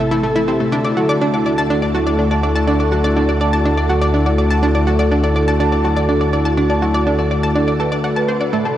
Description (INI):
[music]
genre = ambient, sequencer-driven space music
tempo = 123 BPM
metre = 4/4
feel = straight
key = unclear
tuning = A4 = 438 Hz
[part]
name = sweeping resonant pad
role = sustained chords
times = 0.0-8.8 s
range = C3 to F#4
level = -19 LUFS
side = left 1 dB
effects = chorus
[part]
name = analog pluck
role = riff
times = 0.0-8.8 s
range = A3 to A5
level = -18 LUFS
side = right 1 dB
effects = chorus, ping-pong delay
[part]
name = round analog bass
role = bass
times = 0.0-8.8 s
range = A1 to D2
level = -20 LUFS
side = equal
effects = none
[part]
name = vibraphone with soft mallets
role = arpeggios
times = 0.1-8.6 s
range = E4 to A5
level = -21 LUFS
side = equal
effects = auto-pan, ping-pong delay
[sound]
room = wet shimmer reverb, RT60 6.9 s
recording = worn, warbling old tape, cassette tape, warbly pitch drift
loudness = -14 LUFS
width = side -12 dB against mid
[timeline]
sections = 0.0-8.8 A section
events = none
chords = 0.0 Am; 0.7 D